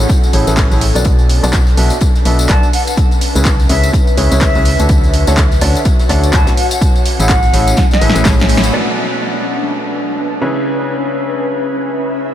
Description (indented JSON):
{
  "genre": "piano house",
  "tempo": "125 BPM",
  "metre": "4/4",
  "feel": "swing 58% on 16ths",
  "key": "B dorian",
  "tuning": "A4 = 435 Hz",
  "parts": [
    { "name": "bright upright piano", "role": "riff", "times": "0.0-12.3 s", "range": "A2 to E5", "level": "-19 LUFS", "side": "equal", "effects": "sidechain pumping, low-pass filter, diffuse ambient delay" },
    { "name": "organ-like FM bass", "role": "bass", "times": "0.0-8.7 s", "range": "A1 to D2", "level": "-14 LUFS", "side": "equal", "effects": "sidechain pumping" },
    { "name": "ethereal airy pad", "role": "texture", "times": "0.0-12.3 s", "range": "A3 to A5", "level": "-20 LUFS", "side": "left 1 dB", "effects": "ensemble chorus, built-in reverb, sidechain pumping" },
    { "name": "damped 70s drum kit", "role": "drums", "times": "0.1-8.7 s", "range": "hi-hat, snare drum", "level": "-30 LUFS", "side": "left 3 dB", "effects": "none" },
    { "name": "electronic kick drum", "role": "drums", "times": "0.1-8.4 s", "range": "none", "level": "-13 LUFS", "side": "equal", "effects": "none" },
    { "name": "punchy analog drum machine", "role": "drums", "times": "0.1-8.7 s", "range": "handclaps, hi-hat, snare drum", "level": "-20 LUFS", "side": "equal", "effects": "none" },
    { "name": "tambourine", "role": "percussion", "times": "0.1-8.7 s", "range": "none", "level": "-26 LUFS", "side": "left 4 dB", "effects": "none" },
    { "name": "silver concert flute", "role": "melody", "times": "2.5-8.3 s", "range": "E5 to A5", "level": "-21 LUFS", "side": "left 1 dB", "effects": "diffuse ambient delay" }
  ],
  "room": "light reverb, studio reverb",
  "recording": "none",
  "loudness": "-10 LUFS",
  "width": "side -11 dB against mid",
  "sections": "0.0-8.7 A section; 8.7-12.3 B section",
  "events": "drum fill 7.8-8.7; band accent 8.6",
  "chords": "0.0 Amaj7; 1.1 Bm7; 2.7 C#m7; 4.9 Dmaj7; 6.6 Amaj7; 8.7 Bm7; 10.4 C#m7"
}